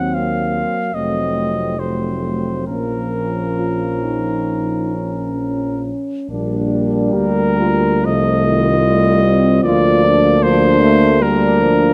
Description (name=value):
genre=classical, hymn-like piece for brass band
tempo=63-78 BPM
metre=4/4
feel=rubato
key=Bb minor, Bb major from 6.3 s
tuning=A4 = 439 Hz
part: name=warm cornet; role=melody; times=0.0-11.9 s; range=Bb4 to Gb5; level=-22 LUFS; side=equal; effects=none
part: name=warm French horn section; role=second line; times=0.0-11.9 s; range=C4 to G4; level=-25 LUFS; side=equal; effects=none
part: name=dark euphonium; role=accompaniment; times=0.0-11.9 s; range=A3 to F4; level=-24 LUFS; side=equal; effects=none
part: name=mellow trombone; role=accompaniment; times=0.0-11.9 s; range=Eb3 to A3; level=-24 LUFS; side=equal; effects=none
part: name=mellow tuba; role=bass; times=0.0-11.9 s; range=F1 to Eb2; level=-22 LUFS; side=equal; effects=none
room=moderate recital hall reverb, RT60 1.6 s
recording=close, detailed microphones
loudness=-16 LUFS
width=mono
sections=0.0-6.3 A section; 6.3-11.9 B section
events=none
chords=0.0 Cdim/Eb; 0.9 F7b9; 2.7 Bbm; 6.3 Bb; 8.1 F7/C; 9.6 Bb/D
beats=0.15 0.93 1.78 | 2.68 3.59 4.48 5.39 | 6.30 7.14 8.05 8.86 | 9.64 10.43 11.22